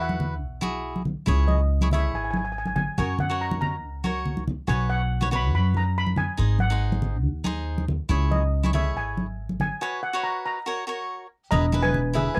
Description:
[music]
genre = calypso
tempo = 141 BPM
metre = 4/4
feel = straight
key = unclear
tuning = A4 = 440 Hz
[part]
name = steel pan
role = melody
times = 0.0-12.4 s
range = G#4 to B5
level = -31 LUFS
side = equal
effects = none
[part]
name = cavaquinho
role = accompaniment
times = 0.0-12.4 s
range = D#4 to C#5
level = -33 LUFS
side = equal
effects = none
[part]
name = upright bass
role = bass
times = 0.0-12.4 s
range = E1 to F#2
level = -27 LUFS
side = equal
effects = none
[part]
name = congas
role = percussion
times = 0.1-12.3 s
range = none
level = -31 LUFS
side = equal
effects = none
[sound]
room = little or no reverb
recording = dry, close 1970s-style studio recording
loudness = -25 LUFS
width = mono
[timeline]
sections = 0.0-11.5 A section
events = break 9.8-11.5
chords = 0.0 Esus2; 1.3 C#m; 3.0 F#; 4.7 Bsus2; 6.4 G#7; 8.1 C#m; 9.8 F#sus4; 10.7 F#; 11.5 Emaj7

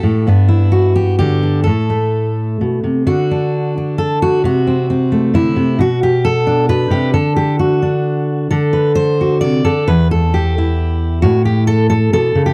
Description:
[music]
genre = folk, solo fingerstyle acoustic guitar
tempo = 132 BPM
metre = 3/4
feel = straight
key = A dorian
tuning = A4 = 440 Hz
[part]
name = fingerpicked steel-string acoustic guitar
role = solo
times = 0.0-12.5 s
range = E2 to D5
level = -14 LUFS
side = equal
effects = none
[sound]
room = light reverb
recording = dry, close 1970s-style studio recording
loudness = -15 LUFS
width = mono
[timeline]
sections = 0.0-3.1 A section; 3.1-12.5 B section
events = none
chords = 0.3 G; 1.7 Am; 3.1 N.C.; 4.4 Am/C; 5.8 Bm; 7.1 D; 9.9 N.C.; 11.2 A

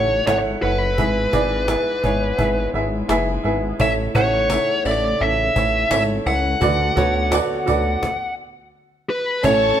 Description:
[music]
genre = piano-driven pop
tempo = 85 BPM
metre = 4/4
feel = straight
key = A major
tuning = A4 = 440 Hz
[part]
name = bluesy overdriven lead guitar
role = melody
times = 0.0-9.8 s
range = B4 to F#5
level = -20 LUFS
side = left 1 dB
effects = distortion
[part]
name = clear upright piano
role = accompaniment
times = 0.0-9.8 s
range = G#2 to F#5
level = -22 LUFS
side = right 3 dB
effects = none
[part]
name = sweeping resonant pad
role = sustained chords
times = 0.0-9.8 s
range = C#3 to F#4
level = -34 LUFS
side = left 2 dB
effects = none
[part]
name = chorused synth bass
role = bass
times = 0.0-9.7 s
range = F#1 to D2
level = -24 LUFS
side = left 1 dB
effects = none
[part]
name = cajon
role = drums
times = 0.3-9.6 s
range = none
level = -26 LUFS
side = left 1 dB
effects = none
[part]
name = tambourine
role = percussion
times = 3.8-9.6 s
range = none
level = -39 LUFS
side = left 6 dB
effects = none
[part]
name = warm studio violin section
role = second line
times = 9.4-9.8 s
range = A4 to A5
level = -22 LUFS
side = left 4 dB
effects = none
[sound]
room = moderate stone room reverb, RT60 1.4 s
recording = band playing live in one room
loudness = -17 LUFS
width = side -10 dB against mid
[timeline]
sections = 0.0-9.4 A section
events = stop 8.0-9.4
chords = 0.0 A; 1.0 E/G#; 3.8 A; 6.6 D6

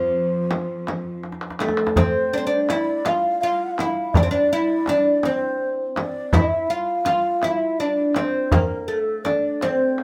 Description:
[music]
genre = Persian modal ensemble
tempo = 55 BPM (dotted quarters)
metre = 6/8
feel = straight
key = F dastgah mahur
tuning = A4 = 438 Hz
[part]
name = oud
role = melody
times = 0.0-10.0 s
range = F3 to F4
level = -24 LUFS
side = equal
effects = none
[part]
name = breathy mellow low ney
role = second line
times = 0.0-10.0 s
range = F4 to F5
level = -28 LUFS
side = equal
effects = none
[part]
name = rich studio cello section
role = drone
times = 0.0-2.0 s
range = F2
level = -33 LUFS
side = equal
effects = none
[part]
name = frame drum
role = percussion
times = 0.5-9.8 s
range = none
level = -27 LUFS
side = equal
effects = none
[part]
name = tombak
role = percussion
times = 0.5-10.0 s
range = none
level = -26 LUFS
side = equal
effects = none
[sound]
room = light reverb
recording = none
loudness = -21 LUFS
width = mono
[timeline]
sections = 0.0-2.0 A section; 2.0-10.0 B section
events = drum fill 1.2-2.0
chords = none

